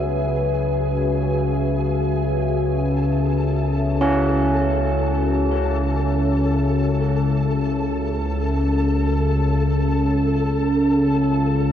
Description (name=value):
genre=dark ambient drone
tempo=free time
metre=none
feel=none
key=unclear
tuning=A4 = 442 Hz
part: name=deep dark ambient pad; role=sustained chords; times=0.0-11.7 s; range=C#4 to E5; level=-27 LUFS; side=left 1 dB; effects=chorus, built-in reverb
part: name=analog drone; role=drone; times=0.0-11.7 s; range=C#2 to C#3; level=-19 LUFS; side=equal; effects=chorus
part: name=flickering grainy texture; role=texture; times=0.0-11.7 s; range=G#4 to A4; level=-28 LUFS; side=left 2 dB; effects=built-in reverb
part: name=carillon bells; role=arpeggios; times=4.0-10.0 s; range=C#4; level=-25 LUFS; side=right 1 dB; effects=ping-pong delay
room=wet huge ambient reverb, RT60 8.2 s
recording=worn, warbling old tape, cassette tape, warbly pitch drift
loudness=-18 LUFS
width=side -10 dB against mid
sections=0.0-11.7 A section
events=fade-in on synth drone 0.0-11.7; fade-in on synth texture 0.0-11.7; fade-out on ambient pad 0.0-11.7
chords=0.0 C#m